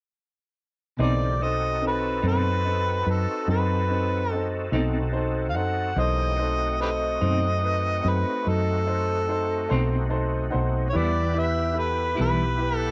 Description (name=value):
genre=slow blues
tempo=48 BPM (dotted quarters)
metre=12/8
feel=straight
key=unclear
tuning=A4 = 442 Hz
part: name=overdriven harmonica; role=melody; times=1.0-12.9 s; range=G4 to F#5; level=-29 LUFS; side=equal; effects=plate reverb
part: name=semi-hollow electric guitar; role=accompaniment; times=1.0-12.4 s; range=B2 to E4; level=-32 LUFS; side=equal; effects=tremolo, plate reverb
part: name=warm upright piano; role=accompaniment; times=1.0-12.9 s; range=C4 to A5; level=-32 LUFS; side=equal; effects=plate reverb
part: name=overdriven tonewheel organ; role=sustained chords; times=1.0-12.9 s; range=C#3 to B4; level=-36 LUFS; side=equal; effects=chorus vibrato, slow rotary speaker, plate reverb
part: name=hollow-body short-scale fingered electric bass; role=bass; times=1.0-12.9 s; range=B1 to F#2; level=-28 LUFS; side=equal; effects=none
room=light reverb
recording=none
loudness=-25 LUFS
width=mono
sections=1.0-12.9 A section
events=upright piano fill 9.7-10.9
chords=1.0 B7b9; 10.9 Em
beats=| 0.99 2.23 3.48 4.72 | 5.97 7.21 8.46 9.70 | 10.94 12.18